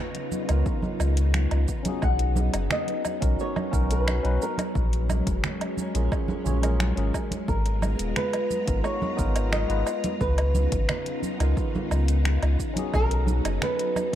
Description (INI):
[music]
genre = sunset chillout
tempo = 88 BPM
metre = 4/4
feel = straight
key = unclear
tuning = A4 = 439 Hz
[part]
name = flamenco guitar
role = melody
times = 0.0-14.2 s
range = A#4 to F#5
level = -31 LUFS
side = equal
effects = dub echo
[part]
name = soft string machine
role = sustained chords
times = 0.0-14.2 s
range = C#3 to A#5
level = -32 LUFS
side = equal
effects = ensemble chorus
[part]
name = deep house drum kit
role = drums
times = 0.1-14.1 s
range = finger snaps, hi-hat, shaker, woodblock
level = -32 LUFS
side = right 1 dB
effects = overdrive, tape echo
[part]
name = congas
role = percussion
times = 0.3-14.1 s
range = none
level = -34 LUFS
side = right 3 dB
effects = tape echo
[part]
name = tine electric piano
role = accompaniment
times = 0.5-14.2 s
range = B3 to C#5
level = -34 LUFS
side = moving between left 6 dB and right 8 dB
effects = auto-pan, tape echo
[part]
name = warm sub bass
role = bass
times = 0.5-13.6 s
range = D#1 to C#2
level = -23 LUFS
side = equal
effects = none
[part]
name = electronic kick drum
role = drums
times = 0.7-13.1 s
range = none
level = -29 LUFS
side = equal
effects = overdrive
[sound]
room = light reverb, digital ambience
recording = echo-heavy mix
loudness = -23 LUFS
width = side -11 dB against mid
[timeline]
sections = 0.0-14.2 A section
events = none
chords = 0.0 C#13; 2.0 Bmaj7; 4.8 A#m7; 7.5 G#m69; 10.2 C#13; 12.9 Bmaj7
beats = 0.66 1.34 | 2.03 2.71 3.39 4.07 | 4.75 5.44 6.12 6.80 | 7.48 8.16 8.85 9.53 | 10.21 10.89 11.57 12.25 | 12.94 13.62